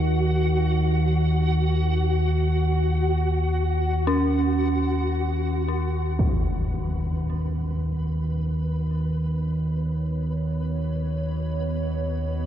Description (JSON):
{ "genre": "dark ambient drone", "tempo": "free time", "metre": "none", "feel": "none", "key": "unclear", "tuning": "A4 = 444 Hz", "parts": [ { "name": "dark detuned synth bell", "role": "arpeggios", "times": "0.0-12.5 s", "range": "Db4 to Db5", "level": "-28 LUFS", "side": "right 2 dB", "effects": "chorus, ping-pong delay" }, { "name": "deep rumbling drone", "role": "drone", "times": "0.0-12.5 s", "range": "Eb2 to Eb3", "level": "-23 LUFS", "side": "equal", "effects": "built-in reverb" }, { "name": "flickering grainy texture", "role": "texture", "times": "0.0-12.5 s", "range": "Gb4 to B4", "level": "-30 LUFS", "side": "equal", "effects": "built-in reverb" }, { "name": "dark analog pad", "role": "sustained chords", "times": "8.2-12.5 s", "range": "B3 to D#5", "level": "-36 LUFS", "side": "right 3 dB", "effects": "chorus" }, { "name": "impact", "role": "percussion", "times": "6.2-6.4 s", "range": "none", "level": "-29 LUFS", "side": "equal", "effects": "low-pass filter on sfx" } ], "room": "wet cathedral reverb, RT60 7.3 s", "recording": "none", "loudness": "-22 LUFS", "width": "side -10 dB against mid", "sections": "0.0-6.2 A section; 6.2-12.5 B section", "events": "none", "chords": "0.0 Ebm7; 6.2 B" }